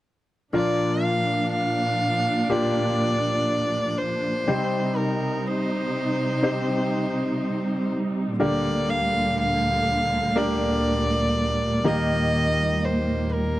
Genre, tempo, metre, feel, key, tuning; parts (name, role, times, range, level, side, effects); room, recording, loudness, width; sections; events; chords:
pop; 61 BPM; 4/4; straight; Bb major; A4 = 440 Hz
warm violin; melody; 0.5-13.6 s; Bb4 to F5; -26 LUFS; equal
bright concert grand piano; accompaniment; 0.5-13.6 s; Bb2 to C5; -26 LUFS; left 1 dB
warm studio string section; sustained chords; 0.5-13.6 s; D2 to Eb4; -26 LUFS; right 1 dB
moderate booth ambience, RT60 0.2 s; dry, close 1970s-style studio recording; -21 LUFS; side -16 dB against mid
0.5-13.6 A section
0.5 Bb; 4.5 Cm; 8.4 Gm/D; 11.8 Eb